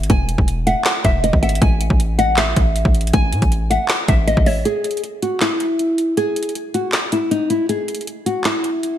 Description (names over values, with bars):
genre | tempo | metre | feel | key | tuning
hip hop, trap | 158 BPM | 4/4 | half-time | unclear | A4 = 440 Hz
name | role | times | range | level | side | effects
nylon-string guitar | melody | 0.0-9.0 s | D#4 to G#5 | -19 LUFS | left 1 dB | wide subtle chorus, low-pass filter
mallet-like synth pluck | second line | 0.0-4.6 s | C#5 to F#5 | -27 LUFS | right 1 dB | chorus, digital delay
hard-hitting 808-style bass | bass | 0.0-4.6 s | E1 to A2 | -19 LUFS | equal | none
trap drum kit | drums | 0.0-8.9 s | handclaps, hi-hat, kick drum, snare drum | -19 LUFS | equal | gated reverb
room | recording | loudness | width
light reverb, digital ambience | bright 1980s-style digital production | -15 LUFS | side -11 dB against mid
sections
0.0-4.7 A section; 4.7-9.0 B section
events
break 4.7-9.0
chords
0.0 E; 1.6 A5; 4.7 N.C.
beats
| 0.10 0.48 0.86 1.24 | 1.62 2.00 2.38 2.76 | 3.14 3.52 3.90 4.28 | 4.66 5.03 5.41 5.79 | 6.17 6.55 6.93 7.31 | 7.69 8.07 8.45 8.83